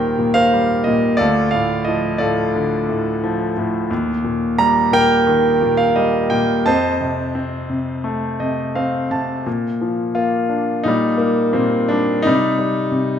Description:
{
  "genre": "classical, lyrical solo piano",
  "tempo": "87 BPM",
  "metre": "4/4",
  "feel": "rubato",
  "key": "Bb major",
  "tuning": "A4 = 440 Hz",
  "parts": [
    { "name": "bright concert grand piano", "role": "solo", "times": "0.0-13.2 s", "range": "D2 to Bb5", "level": "-16 LUFS", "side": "equal", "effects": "none" }
  ],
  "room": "moderate recital hall reverb, RT60 1.5 s",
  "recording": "none",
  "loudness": "-16 LUFS",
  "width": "side -8 dB against mid",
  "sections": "0.0-9.5 A section; 9.5-13.2 B section",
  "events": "grand piano fill 8.1-9.5",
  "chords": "0.0 Eb6; 1.2 Dm; 3.9 Eb; 6.7 F7; 9.5 Bb; 10.9 Bb69; 12.3 Cm",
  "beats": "0.53 | 1.20 1.88 2.56 3.23 | 3.91 4.60 5.29 5.98 | 6.67 7.36 8.05 8.76 | 9.47 10.16 10.86 11.56 | 12.26 12.93"
}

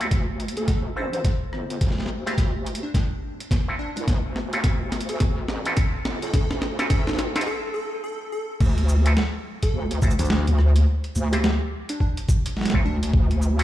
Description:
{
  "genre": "glitch hop",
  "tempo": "106 BPM",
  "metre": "4/4",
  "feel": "swing 61% on 16ths",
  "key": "D minor",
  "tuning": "A4 = 440 Hz",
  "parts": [
    { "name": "auto-wah clav", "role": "stabs", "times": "0.0-13.6 s", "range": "C4 to C5", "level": "-31 LUFS", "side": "equal", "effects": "vintage 12-bit sampler grit, sidechain pumping, low-pass filter, ping-pong delay" },
    { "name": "wobble bass", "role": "bass", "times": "0.0-13.6 s", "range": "G1 to D2", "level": "-24 LUFS", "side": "equal", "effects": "chorus, high-pass filter" },
    { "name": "boom bap sampler-style drum kit", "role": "drums", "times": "0.0-13.6 s", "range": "crash cymbal, hi-hat, rim click, shaker, snare drum", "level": "-29 LUFS", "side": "right 1 dB", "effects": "overdrive" },
    { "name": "electronic kick drum", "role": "drums", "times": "0.1-13.3 s", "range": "none", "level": "-21 LUFS", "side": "equal", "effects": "overdrive" },
    { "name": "plucky unison lead", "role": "melody", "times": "0.6-13.1 s", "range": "D4 to C5", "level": "-33 LUFS", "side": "left 1 dB", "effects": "ping-pong delay" },
    { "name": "gritty slap bass", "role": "bass", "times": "10.2-10.4 s", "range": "D2", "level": "-22 LUFS", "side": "equal", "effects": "overdrive" }
  ],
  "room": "light reverb, digital ambience",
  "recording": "played on a big sound system in a bare room, large studio reverb",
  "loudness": "-21 LUFS",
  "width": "side -13 dB against mid",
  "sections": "0.0-8.6 A section; 8.6-13.6 B section",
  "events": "build-up 0.0-8.6; drum fill 0.0-7.5; break 7.5-8.6; drop 8.6-13.6",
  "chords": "0.0 D5; 8.6 N.C.",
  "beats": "0.12 0.68 1.25 | 1.81 2.38 2.95 3.51 | 4.08 4.64 5.21 5.78 | 6.34 6.91 7.47 8.04 | 8.61 9.17 9.74 10.30 | 10.87 11.44 12.00 12.57 | 13.14"
}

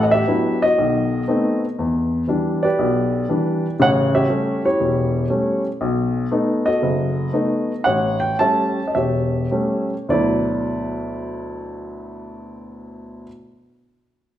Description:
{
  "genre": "solo jazz",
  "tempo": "101-120 BPM",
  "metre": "4/4",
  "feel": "swing 68% on 8ths",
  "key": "D major",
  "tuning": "A4 = 438 Hz",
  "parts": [
    { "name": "warm upright piano", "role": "solo", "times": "0.0-13.3 s", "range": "E1 to A5", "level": "-18 LUFS", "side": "equal", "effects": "none" }
  ],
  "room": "wet recital hall reverb, RT60 1.5 s",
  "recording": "recorded in a church or concert hall",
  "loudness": "-17 LUFS",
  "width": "side -11 dB against mid",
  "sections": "0.0-1.8 A section; 1.8-10.1 B section; 10.1-14.4 C section",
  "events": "slowing down 5.8-10.1",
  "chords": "0.0 D69; 0.8 B7b9; 1.8 Em7; 3.8 A7; 5.8 B7; 7.9 A7; 10.1 D69",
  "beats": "0.28 0.78 1.28 | 1.79 2.29 2.79 3.29 | 3.79 4.30 4.80 5.30 | 5.81 6.31 6.82 7.33 | 7.86 8.39 8.94 9.51 | 10.09 10.68 11.28 11.87 | 12.46 13.05"
}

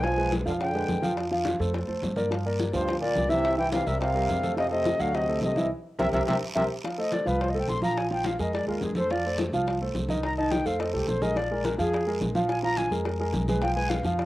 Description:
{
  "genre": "Afro-Cuban jazz",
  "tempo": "212 BPM",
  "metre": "4/4",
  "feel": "straight",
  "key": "unclear",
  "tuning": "A4 = 441 Hz",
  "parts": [
    { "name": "breathy concert flute", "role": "melody", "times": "0.0-14.0 s", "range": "F4 to C6", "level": "-29 LUFS", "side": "left 1 dB", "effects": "cassette tape, plate reverb" },
    { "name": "clear trombone", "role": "second line", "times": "0.0-6.6 s", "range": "G2 to F3", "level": "-31 LUFS", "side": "right 2 dB", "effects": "cassette tape, plate reverb" },
    { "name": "warm grand piano", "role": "accompaniment", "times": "0.0-14.3 s", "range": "Eb3 to Gb5", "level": "-28 LUFS", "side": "right 1 dB", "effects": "cassette tape, plate reverb" },
    { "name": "upright bass", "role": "bass", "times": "0.0-14.3 s", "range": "Bb1 to G2", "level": "-32 LUFS", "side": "equal", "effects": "none" },
    { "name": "bongos", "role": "percussion", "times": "0.0-14.3 s", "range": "none", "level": "-35 LUFS", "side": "left 4 dB", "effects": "none" },
    { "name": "congas", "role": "percussion", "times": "0.0-14.3 s", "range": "none", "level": "-35 LUFS", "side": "equal", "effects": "none" },
    { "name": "guiro", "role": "percussion", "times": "0.0-14.3 s", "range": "none", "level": "-44 LUFS", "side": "right 2 dB", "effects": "none" }
  ],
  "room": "moderate studio reverb, RT60 0.6 s",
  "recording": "home recording on cassette",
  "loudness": "-24 LUFS",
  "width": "side -16 dB against mid",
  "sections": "0.0-6.8 A section; 6.8-14.3 B section",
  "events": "band accent 5.7-6.8; drum fill 6.0-6.8; flute solo 6.8-14.3",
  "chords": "0.0 Bdim7; 1.2 F; 2.3 Gm7; 3.4 C7; 4.6 F7; 5.1 D7b9; 5.7 C7; 6.8 F; 8.0 Bb5; 9.1 F7; 10.8 F; 11.4 Bb7(no3); 13.6 Fdim",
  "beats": "| 0.04 0.32 0.61 0.89 | 1.18 1.46 1.74 2.03 | 2.31 2.59 2.88 3.16 | 3.44 3.73 4.01 4.29 | 4.58 4.86 5.14 5.42 | 5.71 5.99 6.27 6.56 | 6.84 7.12 7.41 7.69 | 7.97 8.26 8.54 8.82 | 9.10 9.39 9.67 9.95 | 10.23 10.52 10.80 11.08 | 11.37 11.65 11.93 12.21 | 12.49 12.78 13.06 13.34 | 13.62 13.90 14.19"
}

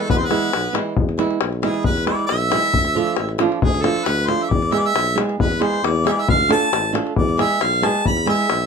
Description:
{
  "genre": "balkan folk, Balkan wedding band",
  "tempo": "136 BPM",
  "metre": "2/4",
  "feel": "straight",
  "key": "E phrygian dominant",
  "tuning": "A4 = 435 Hz",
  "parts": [
    { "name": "warm harmonica", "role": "melody", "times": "0.0-8.7 s", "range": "G#4 to B5", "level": "-20 LUFS", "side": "equal", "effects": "none" },
    { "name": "accordion", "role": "second line", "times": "0.0-0.8 s", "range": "A3 to C4", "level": "-28 LUFS", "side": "right 3 dB", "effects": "none" },
    { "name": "flamenco guitar", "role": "accompaniment", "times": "0.0-8.5 s", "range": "E3 to A4", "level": "-21 LUFS", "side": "right 5 dB", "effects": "none" },
    { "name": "davul", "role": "percussion", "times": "0.0-8.7 s", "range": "none", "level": "-22 LUFS", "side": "left 4 dB", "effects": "none" },
    { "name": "warm tuba", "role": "bass", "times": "0.1-8.7 s", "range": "A1 to E2", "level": "-24 LUFS", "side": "left 1 dB", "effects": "none" }
  ],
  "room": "light reverb",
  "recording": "minimal, uncompressed stereo recording",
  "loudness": "-16 LUFS",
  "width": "side -6 dB against mid",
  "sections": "1.0-8.7 A section",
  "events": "harmonica solo 1.0-8.7",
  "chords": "0.0 E; 2.7 Dm; 4.5 E; 6.3 Dm; 7.2 E",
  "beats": "| 0.10 0.54 | 0.98 1.42 | 1.86 2.30 | 2.74 3.18 | 3.62 4.06 | 4.50 4.95 | 5.39 5.83 | 6.28 6.72 | 7.16 7.61 | 8.05 8.50"
}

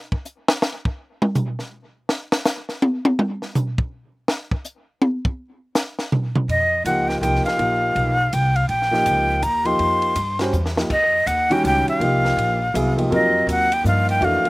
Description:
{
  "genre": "modal jazz",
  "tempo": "163 BPM",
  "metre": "3/4",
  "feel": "swing 63% on 8ths",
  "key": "unclear",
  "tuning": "A4 = 442 Hz",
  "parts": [
    { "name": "compact cocktail drum kit", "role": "drums", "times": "0.1-14.5 s", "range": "crash cymbal, hi-hat, kick drum, ride cymbal, snare drum, toms", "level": "-22 LUFS", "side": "equal", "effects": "none" },
    { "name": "breathy bright jazz flute", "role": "melody", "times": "6.5-14.5 s", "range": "Eb5 to C6", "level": "-19 LUFS", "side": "equal", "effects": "none" },
    { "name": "upright bass", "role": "bass", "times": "6.5-14.5 s", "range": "Bb1 to G2", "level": "-24 LUFS", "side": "equal", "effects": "none" },
    { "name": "warm upright piano", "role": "accompaniment", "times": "6.9-14.5 s", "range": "Eb3 to C5", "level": "-22 LUFS", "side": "equal", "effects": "slapback echo" }
  ],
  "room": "little or no reverb",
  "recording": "recorded outdoors, with no room sound",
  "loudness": "-18 LUFS",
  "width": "side -21 dB against mid",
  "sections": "0.0-6.5 A section; 6.5-14.5 B section",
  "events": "drum solo 0.0-6.5; drum fill 10.5-10.9",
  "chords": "0.0 N.C.; 6.5 F9sus4",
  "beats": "0.25 0.62 | 0.99 1.35 1.72 | 2.09 2.45 2.82 | 3.19 3.55 3.92 | 4.29 4.65 5.02 | 5.38 5.75 6.12 | 6.49 6.85 7.22 | 7.59 7.96 8.32 | 8.69 9.06 9.43 | 9.80 10.16 10.53 | 10.90 11.27 11.64 | 12.01 12.37 12.74 | 13.11 13.48 13.85 | 14.21"
}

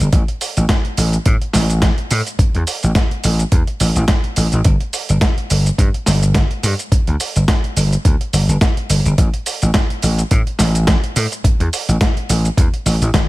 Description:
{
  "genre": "nu-disco, nu disco",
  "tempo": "106 BPM",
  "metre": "4/4",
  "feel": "swing 56% on 16ths",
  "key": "unclear",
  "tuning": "A4 = 440 Hz",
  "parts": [
    { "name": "vintage slap bass", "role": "bass", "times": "0.0-13.1 s", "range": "G1 to A2", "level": "-15 LUFS", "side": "equal", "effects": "none" },
    { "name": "dusty soul sampler-style drum kit", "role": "drums", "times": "0.0-13.3 s", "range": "hi-hat, shaker, snare drum, toms", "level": "-20 LUFS", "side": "right 1 dB", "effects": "overdrive" },
    { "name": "electronic kick drum", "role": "drums", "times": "0.1-13.3 s", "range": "none", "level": "-15 LUFS", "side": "equal", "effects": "overdrive" }
  ],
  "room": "little or no reverb",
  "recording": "none",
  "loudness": "-14 LUFS",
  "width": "side -19 dB against mid",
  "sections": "0.0-13.3 A section",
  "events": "none",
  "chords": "none",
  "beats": "| 0.12 0.69 1.25 1.82 | 2.39 2.95 3.52 4.08 | 4.65 5.22 5.78 6.35 | 6.92 7.48 8.05 8.61 | 9.18 9.74 10.31 10.88 | 11.44 12.01 12.57 13.14"
}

